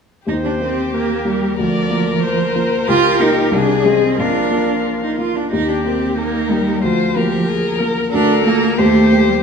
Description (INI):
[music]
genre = quick classical-period movement for piano quartet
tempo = 92 BPM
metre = 2/4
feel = straight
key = Eb major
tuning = A4 = 439 Hz
[part]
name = warm violin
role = melody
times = 0.3-9.4 s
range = F4 to C5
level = -21 LUFS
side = left 8 dB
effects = none
[part]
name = rich cello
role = second line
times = 0.3-9.4 s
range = F3 to F4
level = -18 LUFS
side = right 4 dB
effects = none
[part]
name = dark baby grand piano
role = accompaniment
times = 0.3-9.4 s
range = Bb1 to Eb5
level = -19 LUFS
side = left 3 dB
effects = none
[part]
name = rich viola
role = accompaniment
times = 0.3-9.4 s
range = Eb4 to D5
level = -22 LUFS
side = right 2 dB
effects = none
[sound]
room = moderate scoring stage reverb, RT60 1.7 s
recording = small room ambience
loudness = -14 LUFS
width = side -6 dB against mid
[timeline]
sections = 0.3-9.4 A section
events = none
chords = 0.3 Eb; 1.6 Bb/D; 2.9 Eb7/Db; 3.5 Ab/C; 4.2 Bb; 5.5 Eb; 6.8 Bb/D; 8.8 Cm7/Eb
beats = | 0.28 0.93 | 1.58 2.23 | 2.88 3.53 | 4.19 4.86 | 5.52 6.17 | 6.83 7.47 | 8.12 8.78